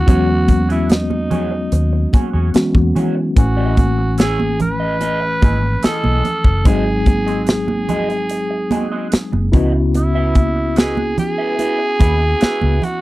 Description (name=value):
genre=lush 1970s-style soul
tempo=73 BPM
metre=4/4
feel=straight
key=C# minor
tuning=A4 = 438 Hz
part: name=breathy tenor saxophone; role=melody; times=0.0-13.0 s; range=D#4 to B4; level=-21 LUFS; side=right 1 dB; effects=none
part: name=mellow tine electric piano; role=accompaniment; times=0.0-13.0 s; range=E3 to G#5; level=-21 LUFS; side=left 2 dB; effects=medium stereo tremolo
part: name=vintage muted fingered electric bass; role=bass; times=0.0-12.8 s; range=F#1 to E3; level=-19 LUFS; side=equal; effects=none
part: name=electric guitar through a small old amp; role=riff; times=0.1-12.9 s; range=B#3 to E5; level=-26 LUFS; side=right 3 dB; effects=wah
part: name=modern studio drum kit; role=drums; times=0.1-13.0 s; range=hi-hat, kick drum, snare drum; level=-13 LUFS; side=equal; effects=none
part: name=congas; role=percussion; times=0.5-13.0 s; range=none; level=-24 LUFS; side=right 4 dB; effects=none
room=little or no reverb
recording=dry, close 1970s-style studio recording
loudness=-14 LUFS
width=side -18 dB against mid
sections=0.0-13.0 A section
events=none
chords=0.1 E69; 3.4 Amaj7; 6.7 G#7; 9.5 C#m11